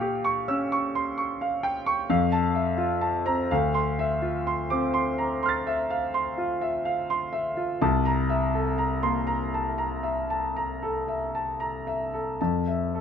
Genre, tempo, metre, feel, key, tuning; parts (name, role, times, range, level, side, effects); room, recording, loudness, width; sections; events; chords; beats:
classical, impressionist solo piano; 37-44 BPM (dotted quarters); 9/8; rubato; A4 = 441 Hz
clear concert grand piano; solo; 0.0-13.0 s; C2 to A6; -24 LUFS; equal
light reverb; close, detailed microphones; -24 LUFS; side -7 dB against mid
0.0-13.0 A section
0.0 Bbm6; 2.1 Fmaj7; 3.5 Dm9; 7.8 C6; 12.4 Fmaj7
0.70 2.09 | 3.50 4.93 6.37 | 7.82 9.28 10.81 | 12.39